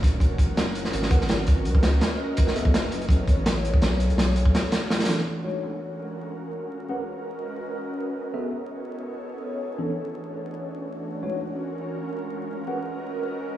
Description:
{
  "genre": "drum and bass, jungle",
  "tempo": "166 BPM",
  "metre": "4/4",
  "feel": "swing 53% on 16ths",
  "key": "Eb minor",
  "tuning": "A4 = 440 Hz",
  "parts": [
    { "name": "ethereal airy pad", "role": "sustained chords", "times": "0.0-13.6 s", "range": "E3 to Eb5", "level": "-30 LUFS", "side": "right 1 dB", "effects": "ensemble chorus, built-in reverb" },
    { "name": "saturated sub bass", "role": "bass", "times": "0.0-4.5 s", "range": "Eb1 to Db2", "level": "-25 LUFS", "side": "equal", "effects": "none" },
    { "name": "crunchy breakbeat drum kit", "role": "drums", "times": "0.0-5.3 s", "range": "hi-hat, kick drum, snare drum", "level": "-22 LUFS", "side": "equal", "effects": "none" },
    { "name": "mellow tine electric piano", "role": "stabs", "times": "1.1-2.7, 5.1-12.8 s", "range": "E3 to Gb5", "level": "-34 LUFS", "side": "left 1 dB", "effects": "medium stereo tremolo, vintage 12-bit sampler grit, dub echo" }
  ],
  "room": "light reverb, small room ambience",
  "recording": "played on a big sound system in a bare room, stone room reverb, vinyl crackle",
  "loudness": "-23 LUFS",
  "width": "side -13 dB against mid",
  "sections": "0.0-5.3 A section; 5.3-13.6 B section",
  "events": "drop 0.0-5.3; break 4.5-5.3",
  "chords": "0.0 Ebm11; 0.9 Abm11; 2.4 Gbm11; 3.8 Bm11; 5.3 Ebm11 (rootless); 6.7 Abm11 (rootless); 8.2 Gbm11 (rootless); 9.6 Bm11 (rootless); 11.1 Ebm11 (rootless); 12.5 Abm11 (rootless)"
}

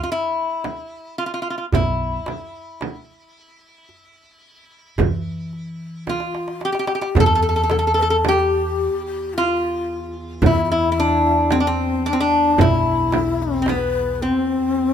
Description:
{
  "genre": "Arabic maqam ensemble",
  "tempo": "111 BPM (eighths)",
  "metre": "10/8",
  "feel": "straight",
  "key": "E maqam kurd",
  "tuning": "A4 = 440 Hz",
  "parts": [
    { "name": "lap resonator guitar", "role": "melody", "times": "0.0-14.9 s", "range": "B3 to A4", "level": "-20 LUFS", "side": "equal", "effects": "none" },
    { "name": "darbuka", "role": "percussion", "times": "0.1-14.9 s", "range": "none", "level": "-23 LUFS", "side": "right 3 dB", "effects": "none" },
    { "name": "frame drum", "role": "percussion", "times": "0.7-13.9 s", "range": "none", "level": "-22 LUFS", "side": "right 4 dB", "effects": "none" },
    { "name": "upright bass", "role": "bass", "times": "1.7-14.3 s", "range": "B1 to E3", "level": "-25 LUFS", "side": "equal", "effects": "none" },
    { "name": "breathy low ney", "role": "second line", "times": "6.1-14.9 s", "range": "C4 to B4", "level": "-23 LUFS", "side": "left 5 dB", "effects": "none" },
    { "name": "dark double bass", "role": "drone", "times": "7.1-14.9 s", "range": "E2", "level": "-32 LUFS", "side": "right 1 dB", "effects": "none" }
  ],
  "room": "light reverb",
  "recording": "minimal, uncompressed stereo recording",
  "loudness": "-17 LUFS",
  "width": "side -8 dB against mid",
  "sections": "0.0-7.2 A section; 7.2-14.9 B section",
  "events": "drum fill 6.1-7.2",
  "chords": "none"
}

